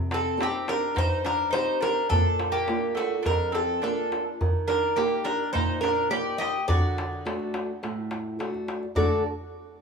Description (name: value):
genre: greek folk, Greek bouzouki band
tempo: 105 BPM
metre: 4/4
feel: straight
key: D phrygian dominant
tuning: A4 = 439 Hz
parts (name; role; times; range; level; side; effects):
- fingerpicked old ladder-braced acoustic guitar; accompaniment; 0.0-9.2 s; F2 to A4; -30 LUFS; right 1 dB; none
- Greek bouzouki; melody; 0.1-9.2 s; F#4 to Eb5; -27 LUFS; equal; none
- mandolin; second line; 0.1-9.2 s; A3 to G4; -32 LUFS; right 4 dB; none
- darbuka; percussion; 0.1-9.2 s; none; -29 LUFS; equal; none
room: light reverb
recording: small room ambience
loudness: -24 LUFS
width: side -5 dB against mid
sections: 0.0-9.0 A section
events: none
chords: 0.0 Cm; 2.1 Bb; 4.4 Eb; 6.7 D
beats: 0.38 0.95 1.53 | 2.10 2.67 3.24 3.81 | 4.39 4.96 5.53 6.10 | 6.67 7.24 7.81 8.38 | 8.96